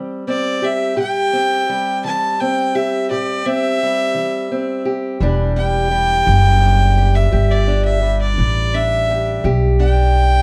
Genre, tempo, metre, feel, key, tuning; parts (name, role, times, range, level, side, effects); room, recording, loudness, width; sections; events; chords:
acoustic country blues, solo or duo; 57 BPM (dotted quarters); 12/8; straight; E minor; A4 = 443 Hz
fingerpicked steel-string acoustic guitar; accompaniment; 0.0-10.4 s; E2 to G4; -23 LUFS; equal
rich fiddle; melody; 0.3-10.4 s; D5 to A5; -21 LUFS; equal
upright bass; bass; 5.2-10.4 s; E1 to B1; -17 LUFS; equal
little or no reverb; dark, warm production; -17 LUFS; mono
0.0-10.4 A section
fiddle solo 0.0-10.4
0.0 Am7; 5.2 Em7